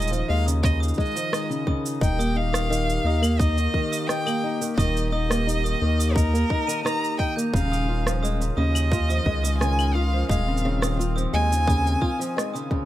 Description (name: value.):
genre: folktronica.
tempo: 87 BPM.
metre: 4/4.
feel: straight.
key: unclear.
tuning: A4 = 440 Hz.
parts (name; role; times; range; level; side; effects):
clear violin; melody; 0.0-12.7 s; Bb4 to Bb5; -28 LUFS; equal; ping-pong delay.
glockenspiel with hard plastic mallets; second line; 0.0-12.7 s; Bb5 to Eb7; -37 LUFS; right 2 dB; ping-pong delay.
warm analog pad; sustained chords; 0.0-12.9 s; Eb3 to G4; -31 LUFS; left 3 dB; chorus.
fingerpicked old ladder-braced acoustic guitar; arpeggios; 0.0-12.9 s; Db3 to F4; -28 LUFS; equal; none.
round analog bass; bass; 0.0-12.0 s; Eb1 to Eb2; -24 LUFS; equal; none.
electronic cabasa, rim click and claves; drums; 0.0-12.7 s; none; -30 LUFS; right 2 dB; none.
electronic kick drum; drums; 0.6-12.8 s; none; -24 LUFS; equal; none.
room: light reverb.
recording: none.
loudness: -21 LUFS.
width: side -14 dB against mid.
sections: 0.0-12.9 A section.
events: none.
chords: 0.0 Dbadd9/Eb; 2.0 Eb; 7.5 Dbadd9/Eb.